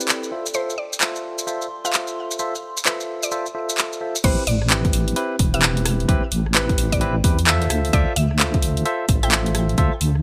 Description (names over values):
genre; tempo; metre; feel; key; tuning
UK garage, two-step garage; 130 BPM; 4/4; swing 63% on 16ths; A minor; A4 = 440 Hz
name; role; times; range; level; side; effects
barky tine electric piano; stabs; 0.0-9.9 s; C4 to E5; -28 LUFS; equal; overdrive, low-pass filter, delay
maracas; percussion; 0.0-4.2 s; none; -29 LUFS; equal; none
warbly tape-like pad; texture; 0.0-4.2 s; A4 to C6; -39 LUFS; equal; chorus, built-in reverb, sidechain pumping
house drum kit; drums; 0.1-10.2 s; crash cymbal, handclaps, hi-hat, rim click; -23 LUFS; equal; overdrive, small room reverb
mallet-like synth pluck; melody; 0.5-9.4 s; B4 to G5; -31 LUFS; equal; chorus, delay
deep soft wobble bass; bass; 4.2-10.2 s; E1 to E2; -23 LUFS; equal; chorus, tube saturation, sidechain pumping
electronic kick drum; drums; 4.2-9.9 s; none; -22 LUFS; equal; overdrive, small room reverb
room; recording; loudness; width
light reverb; bright 1980s-style digital production; -21 LUFS; mono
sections
0.0-4.2 A section; 4.2-10.2 B section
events
drop 4.2-10.2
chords
0.3 Dm7; 4.2 Am7; 7.7 Dm7